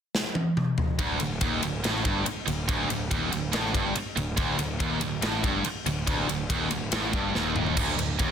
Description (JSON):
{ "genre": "hard rock", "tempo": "141 BPM", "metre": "4/4", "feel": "straight", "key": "unclear", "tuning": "A4 = 440 Hz", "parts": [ { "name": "big rock drum kit", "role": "drums", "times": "0.1-8.3 s", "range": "crash cymbal, kick drum, ride cymbal, snare drum, toms", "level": "-28 LUFS", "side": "left 1 dB", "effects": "none" }, { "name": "cranked stack guitar", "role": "riff", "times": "1.0-8.3 s", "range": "D2 to A2", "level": "-32 LUFS", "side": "left 9 dB", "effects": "overdrive" }, { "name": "scooped high-gain guitar", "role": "riff", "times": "1.0-8.3 s", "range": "D2 to A2", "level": "-29 LUFS", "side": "right 9 dB", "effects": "distortion" }, { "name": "fuzz picked electric bass", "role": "bass", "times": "1.0-8.3 s", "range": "D1 to A1", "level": "-33 LUFS", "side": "equal", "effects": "overdrive" } ], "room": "moderate large studio reverb, RT60 0.9 s, small room reverb", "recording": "dense, heavily limited modern master", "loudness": "-25 LUFS", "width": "side -8 dB against mid", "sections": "1.0-8.3 A section", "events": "drum fill 0.1-1.0, 7.4-7.8", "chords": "0.0 N.C.; 1.0 D5" }